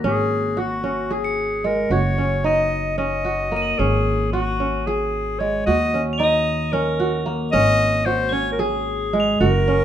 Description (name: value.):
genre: contemporary instrumental, chamber music in an uneven meter.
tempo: 224 BPM (eighths).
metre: 7/8.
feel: straight.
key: unclear.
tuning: A4 = 441 Hz.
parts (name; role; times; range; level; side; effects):
kora; arpeggios; 0.0-9.8 s; Ab3 to Ab4; -22 LUFS; right 1 dB; none.
upright bass; bass; 0.0-9.8 s; Gb1 to Eb2; -24 LUFS; right 1 dB; none.
crotales; texture; 0.0-9.6 s; Db7 to Bb7; -31 LUFS; right 4 dB; none.
bright clarinet; melody; 0.1-9.8 s; Gb4 to Eb5; -22 LUFS; left 2 dB; none.
room: moderate studio reverb, RT60 0.8 s.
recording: none.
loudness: -18 LUFS.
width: side -10 dB against mid.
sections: 0.0-9.8 A section.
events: none.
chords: 0.0 Ab7sus4; 1.9 Gb6; 3.8 Ab7sus4; 5.7 Ebm7; 7.5 Ab7sus4.